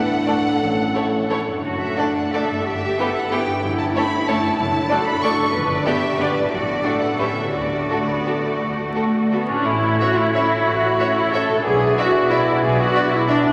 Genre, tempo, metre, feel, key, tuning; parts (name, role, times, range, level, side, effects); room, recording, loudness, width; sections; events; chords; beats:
classical, orchestral ballroom waltz; 161-203 BPM; 3/4; rubato; D major, A major from 9.7 s; A4 = 440 Hz
rich chamber violin section; melody; 0.0-13.4 s; D5 to C#6; -28 LUFS; equal
dark French horn section; sustained chords; 0.0-13.4 s; A3 to G4; -31 LUFS; equal
concert harp; arpeggios; 0.0-13.5 s; F#2 to A4; -30 LUFS; equal
clear chamber cello section; bass; 0.0-12.9 s; A2 to B4; -29 LUFS; equal
rich chamber violin section; second line; 0.3-13.4 s; F#4 to E5; -28 LUFS; equal
clear symphonic viola section; accompaniment; 0.3-13.5 s; A3 to A4; -24 LUFS; equal
clear chamber double bass section; bass; 0.6-12.9 s; F#1 to D2; -33 LUFS; equal
clear oboe; second line; 9.7-13.5 s; C#5 to D5; -30 LUFS; equal
silver concert flute; second line; 9.7-13.5 s; E5; -29 LUFS; equal
mellow bassoon; accompaniment; 9.7-13.5 s; A3 to B3; -28 LUFS; equal
wet cathedral reverb, RT60 5.8 s; vinyl crackle; -20 LUFS; mono
0.0-9.7 A section; 9.7-13.5 B section
0.0 D/A; 0.6 A; 1.6 D/F#; 2.7 Em/G; 3.6 A7/G; 4.6 D/F#; 5.5 G; 6.5 D/A; 7.2 A9; 7.5 D; 9.7 A; 11.6 E7/B
0.27 | 0.60 0.94 1.30 | 1.64 1.98 2.33 | 2.65 2.98 3.32 | 3.63 3.95 4.28 | 4.59 4.90 5.23 | 5.54 5.86 6.19 | 6.51 6.84 7.19 | 7.54 7.90 8.26 | 8.61 8.96 9.31 | 9.66 10.00 10.34 | 10.66 10.99 11.33 | 11.65 11.97 12.31 | 12.63 12.95 13.29